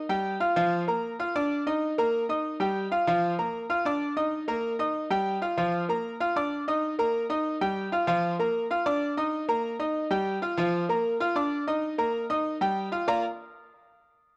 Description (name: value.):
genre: latin.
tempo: 192 BPM.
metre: 4/4.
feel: straight.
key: Bb major.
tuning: A4 = 437 Hz.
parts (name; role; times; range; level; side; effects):
bright concert grand piano; solo; 0.0-13.2 s; F3 to F6; -28 LUFS; equal; cassette tape.
room: light reverb, small room ambience.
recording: home recording on cassette.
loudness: -28 LUFS.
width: mono.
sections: 0.0-8.1 A section; 8.1-13.1 B section; 13.1-14.3 C section.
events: none.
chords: 0.0 N.C.; 0.6 Bb; 1.8 Eb; 3.1 Bb; 4.3 Eb; 5.6 Bb; 6.8 Eb; 8.1 Bb; 9.3 Eb; 10.6 Bb; 11.8 Eb; 13.1 Bb.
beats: 0.26 | 0.57 0.88 1.20 1.51 | 1.82 2.14 2.45 2.76 | 3.08 3.39 3.70 4.01 | 4.33 4.64 4.95 5.27 | 5.58 5.89 6.21 6.52 | 6.83 7.14 7.46 7.77 | 8.08 8.39 8.71 9.02 | 9.33 9.64 9.96 10.27 | 10.58 10.89 11.21 11.52 | 11.83 12.15 12.46 12.77 | 13.09.